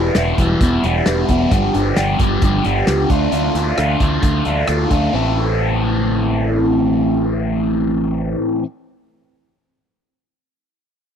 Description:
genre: indie rock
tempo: 132 BPM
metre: 4/4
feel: straight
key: A minor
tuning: A4 = 441 Hz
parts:
  - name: overdriven electric guitar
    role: riff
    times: 0.0-8.7 s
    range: E2 to A4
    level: -17 LUFS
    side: equal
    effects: phaser
  - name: growling picked electric bass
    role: bass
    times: 0.0-8.3 s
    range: E1 to D2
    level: -20 LUFS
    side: equal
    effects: overdrive
  - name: loose indie drum kit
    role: drums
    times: 0.1-5.0 s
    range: hi-hat, kick drum, rim click, snare drum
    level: -19 LUFS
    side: equal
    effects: none
room: little or no reverb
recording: dry, close 1970s-style studio recording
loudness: -14 LUFS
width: side -8 dB against mid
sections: 0.0-5.1 A section; 5.1-8.8 B section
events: none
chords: 0.0 Em; 1.5 G7; 3.1 Dm; 5.1 Am

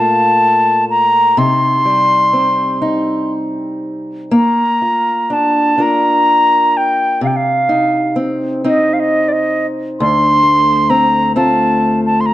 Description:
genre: celtic folk, Celtic slow air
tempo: 40-45 BPM (dotted quarters)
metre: 6/8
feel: rubato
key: unclear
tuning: A4 = 441 Hz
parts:
  - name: mellow wooden flute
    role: melody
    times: 0.0-12.3 s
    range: D5 to C6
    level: -12 LUFS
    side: equal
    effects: none
  - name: fingerpicked old ladder-braced acoustic guitar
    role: accompaniment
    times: 0.0-12.3 s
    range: D2 to Bb4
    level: -17 LUFS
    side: left 1 dB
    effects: none
room: moderate recital hall reverb, RT60 1.7 s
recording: close, detailed microphones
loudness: -11 LUFS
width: side -14 dB against mid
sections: 0.0-4.3 A section; 4.3-12.3 B section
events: none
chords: 0.0 Bb5; 1.4 Cm; 4.3 Bb; 7.2 Cm; 10.0 Dm7

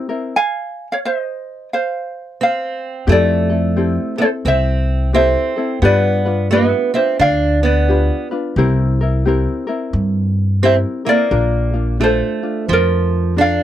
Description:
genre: Hawaiian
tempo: 88 BPM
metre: 4/4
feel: swing 62% on 8ths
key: F minor, F major from 3.1 s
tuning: A4 = 439 Hz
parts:
  - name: ukulele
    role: accompaniment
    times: 0.0-13.6 s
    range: C4 to B4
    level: -22 LUFS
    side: left 3 dB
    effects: none
  - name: ukulele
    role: melody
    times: 0.4-13.6 s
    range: F4 to Ab5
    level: -18 LUFS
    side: left 1 dB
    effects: none
  - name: fingerpicked old ladder-braced acoustic guitar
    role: second line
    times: 2.4-13.6 s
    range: F3 to D4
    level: -20 LUFS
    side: right 5 dB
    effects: none
  - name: upright bass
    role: bass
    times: 3.1-13.6 s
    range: Bb1 to G2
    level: -16 LUFS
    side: equal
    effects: none
room: light reverb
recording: dry, close 1970s-style studio recording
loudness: -14 LUFS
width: side -11 dB against mid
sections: 0.0-3.1 A section; 3.1-13.6 B section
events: none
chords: 0.3 F5; 3.1 Fmaj9; 5.8 G7; 8.6 C7; 11.3 Bbmaj7

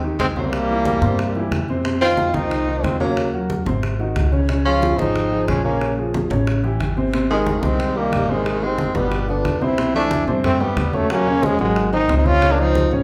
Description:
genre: Afro-Cuban jazz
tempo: 182 BPM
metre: 4/4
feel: straight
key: Ab major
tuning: A4 = 439 Hz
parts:
  - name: bright trombone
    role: melody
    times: 0.0-12.9 s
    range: Ab3 to F4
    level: -24 LUFS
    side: equal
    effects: none
  - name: breathy tenor saxophone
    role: second line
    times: 0.0-12.9 s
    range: Eb3 to Db4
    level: -27 LUFS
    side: equal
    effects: none
  - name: warm concert grand piano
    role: accompaniment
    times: 0.0-13.0 s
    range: Cb3 to Db6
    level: -25 LUFS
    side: equal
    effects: none
  - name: upright bass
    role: bass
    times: 0.0-13.0 s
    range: G1 to G2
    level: -26 LUFS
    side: equal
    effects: none
  - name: congas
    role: percussion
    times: 0.0-13.0 s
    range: none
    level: -30 LUFS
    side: equal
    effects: none
  - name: bongos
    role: percussion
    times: 0.2-12.9 s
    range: none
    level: -34 LUFS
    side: equal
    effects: none
room: wet large studio reverb, RT60 1.1 s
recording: band playing live in one room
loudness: -19 LUFS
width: mono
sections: 0.0-9.8 A section; 9.8-13.0 B section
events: none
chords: 0.0 Abmaj7 (rootless); 0.5 C7; 1.8 F5; 3.2 Ebm7; 3.8 Ab7; 4.5 Dbmaj7; 5.8 Bbm7; 6.5 A7; 7.1 Abmaj7; 9.1 G7; 9.8 C6; 11.1 Ebm7; 11.8 Ab7; 12.4 Dbmaj7

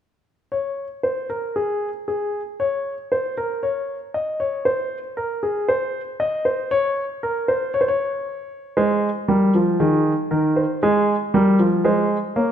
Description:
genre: classical, baroque-style two-part invention for grand piano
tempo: 58 BPM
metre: 4/4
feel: straight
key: unclear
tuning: A4 = 439 Hz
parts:
  - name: dark grand piano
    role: solo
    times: 0.5-12.5 s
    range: Eb3 to Eb5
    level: -19 LUFS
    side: equal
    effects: none
room: wet recital hall reverb, RT60 1.5 s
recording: none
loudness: -19 LUFS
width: side -9 dB against mid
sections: 0.5-12.5 A section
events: none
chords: 0.5 N.C.; 8.8 Ab; 10.8 Bb5

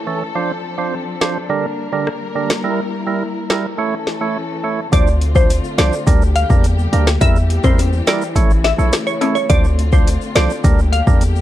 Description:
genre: dancehall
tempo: 105 BPM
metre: 4/4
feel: straight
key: D minor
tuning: A4 = 439 Hz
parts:
  - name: dark studio string section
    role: sustained chords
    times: 0.0-11.4 s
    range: C#3 to Bb4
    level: -25 LUFS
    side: left 3 dB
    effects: sidechain pumping
  - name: percussive tonewheel organ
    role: accompaniment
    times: 0.1-11.2 s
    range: D3 to C#5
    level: -22 LUFS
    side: right 5 dB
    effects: overdrive
  - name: afro-pop drum kit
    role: drums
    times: 1.2-11.3 s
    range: hi-hat, kick drum, rim click, snare drum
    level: -16 LUFS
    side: equal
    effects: none
  - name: glassy wavetable pluck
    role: melody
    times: 4.9-11.0 s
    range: C5 to F5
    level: -21 LUFS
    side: left 1 dB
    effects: chorus, digital delay
  - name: hard-hitting 808-style bass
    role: bass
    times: 4.9-11.4 s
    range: A1 to E2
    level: -16 LUFS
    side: equal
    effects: none
  - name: tube shaker and timbales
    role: percussion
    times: 4.9-11.4 s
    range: none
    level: -27 LUFS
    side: left 6 dB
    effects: none
room: little or no reverb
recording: dark, warm production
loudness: -14 LUFS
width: side -13 dB against mid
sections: 0.0-4.9 A section; 4.9-11.4 B section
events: break 4.4-4.9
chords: 0.4 Dm7; 1.5 Gm/D; 2.6 Edim; 3.8 A; 4.9 Dm7; 6.1 Gm/D; 7.2 Edim; 8.4 A; 9.5 Dm7; 10.6 Gm/D

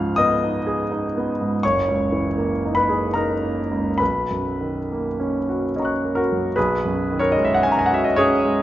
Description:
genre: classical, impressionist solo piano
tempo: 67-84 BPM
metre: 3/4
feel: rubato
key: B major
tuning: A4 = 438 Hz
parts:
  - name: clear concert grand piano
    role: solo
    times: 0.0-8.6 s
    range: F#1 to F#6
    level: -18 LUFS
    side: equal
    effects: none
room: wet recital hall reverb, RT60 1.4 s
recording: nothing above 7.6 kHz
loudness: -19 LUFS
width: side -13 dB against mid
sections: 0.0-6.6 A section; 6.6-8.6 A section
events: none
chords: 0.0 C#9; 1.6 F#13; 4.0 Bmaj9; 6.6 B69

